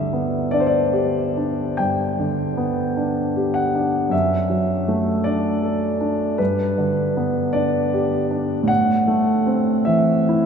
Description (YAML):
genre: classical, romantic nocturne for solo piano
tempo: 52 BPM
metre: 4/4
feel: rubato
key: G major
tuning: A4 = 440 Hz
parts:
  - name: warm concert grand piano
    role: solo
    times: 0.0-10.5 s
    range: F#2 to G5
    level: -18 LUFS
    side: equal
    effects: none
room: wet cathedral reverb, RT60 5.2 s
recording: in a vast, echoing space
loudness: -18 LUFS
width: side -6 dB against mid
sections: 0.0-10.5 A section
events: none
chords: 0.0 G; 4.1 D/F#; 6.4 G; 8.7 Am